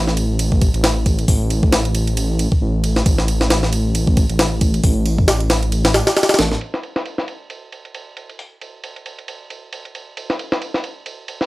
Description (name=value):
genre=breakbeat, breaks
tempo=135 BPM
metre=4/4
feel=swing 57% on 16ths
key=unclear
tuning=A4 = 439 Hz
part: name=dark detuned saw bass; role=bass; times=0.0-6.6 s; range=A1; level=-18 LUFS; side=equal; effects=none
part: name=breakbeat sampler-style drum kit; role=drums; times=0.1-11.5 s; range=hi-hat, kick drum, ride cymbal, snare drum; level=-18 LUFS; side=equal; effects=low-pass filter on snare, small room reverb, low-pass filter on cymbals, low-pass filter on kick, low-pass filter on hats
room=little or no reverb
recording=dry, gritty hardware recording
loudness=-15 LUFS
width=side -19 dB against mid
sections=0.0-6.6 A section; 6.6-11.5 B section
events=kick drops out 5.7-6.6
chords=none